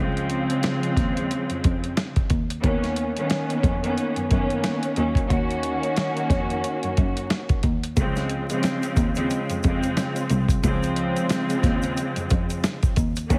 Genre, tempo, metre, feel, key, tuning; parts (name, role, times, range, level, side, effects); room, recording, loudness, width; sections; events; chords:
hip hop, boom-bap hip-hop; 90 BPM; 4/4; swing 58% on 16ths; Db major; A4 = 440 Hz
warm studio string section; accompaniment; 0.0-13.4 s; Db3 to Gb4; -27 LUFS; equal; high-pass filter, low-pass filter
warm cello; bass; 0.0-13.4 s; C2 to Gb2; -29 LUFS; equal
dusty soul sampler-style drum kit; drums; 0.2-13.4 s; hi-hat, kick drum, snare drum; -26 LUFS; equal
tube shaker; percussion; 8.0-13.4 s; -46 LUFS; equal
small room ambience; heavily compressed radio sound, multiband compression, vinyl crackle; -24 LUFS; mono
0.0-8.0 A section; 8.0-13.4 B section
0.0 Dbmaj7; 2.6 Cbmaj9/Eb; 5.0 Ebm7; 8.0 Dbmaj7